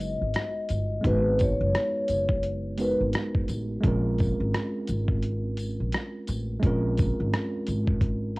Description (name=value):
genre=lo-fi hip hop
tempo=86 BPM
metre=4/4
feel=swing 61% on 16ths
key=unclear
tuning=A4 = 444 Hz
part: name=vibraphone with soft mallets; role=melody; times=0.0-3.0 s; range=B4 to D#5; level=-28 LUFS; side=left 1 dB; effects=cassette tape, tape echo, plate reverb
part: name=mellow tine electric piano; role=accompaniment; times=0.0-8.4 s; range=G#3 to B4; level=-31 LUFS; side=right 1 dB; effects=medium stereo tremolo, cassette tape
part: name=upright bass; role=bass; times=0.0-8.4 s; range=F#1 to A#1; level=-28 LUFS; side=equal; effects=none
part: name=tambourine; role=percussion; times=0.0-7.9 s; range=none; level=-48 LUFS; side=left 3 dB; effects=none
part: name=dusty soul sampler-style drum kit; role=drums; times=0.3-8.4 s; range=hi-hat, kick drum, rim click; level=-27 LUFS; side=equal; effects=overdrive, cassette tape
room=light reverb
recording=home recording on cassette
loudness=-24 LUFS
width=side -23 dB against mid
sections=0.0-8.4 A section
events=none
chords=0.0 G#m9; 3.8 A#m9